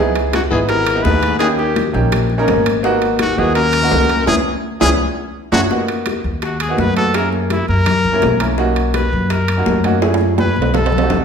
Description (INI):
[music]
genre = Afro-Cuban jazz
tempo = 167 BPM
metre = 4/4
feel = straight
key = G# minor from 5.7 s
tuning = A4 = 440 Hz
[part]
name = clear baby grand piano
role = accompaniment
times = 0.0-11.2 s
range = A3 to B4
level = -19 LUFS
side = right 2 dB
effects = none
[part]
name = upright bass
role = bass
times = 0.0-11.2 s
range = F#1 to F#2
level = -19 LUFS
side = equal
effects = none
[part]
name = congas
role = percussion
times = 0.2-11.2 s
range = none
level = -24 LUFS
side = left 2 dB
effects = none
[part]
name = timbales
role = percussion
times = 0.2-11.2 s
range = none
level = -23 LUFS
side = right 5 dB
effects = none
[part]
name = bright trumpet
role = melody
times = 0.3-11.2 s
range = C#4 to B4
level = -19 LUFS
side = left 1 dB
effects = none
[part]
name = breathy baritone saxophone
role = second line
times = 0.3-5.6 s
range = C#2 to G#2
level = -22 LUFS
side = left 5 dB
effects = none
[part]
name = bongos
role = percussion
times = 0.3-11.2 s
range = none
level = -26 LUFS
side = left 5 dB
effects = none
[sound]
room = wet recital hall reverb, RT60 1.3 s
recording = recorded in a church or concert hall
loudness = -13 LUFS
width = side -6 dB against mid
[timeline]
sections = 0.0-5.7 A section; 5.7-11.2 B section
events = band accent 4.3-5.7; trumpet solo 5.7-11.2; drum fill 10.0-11.2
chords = 0.0 C#m7; 1.4 D#7; 2.8 G#m9; 4.3 C#m7; 5.0 F#5; 5.7 G#m9 (rootless); 7.1 F#9; 8.6 Bmaj9; 10.0 F#m9; 10.7 B7b9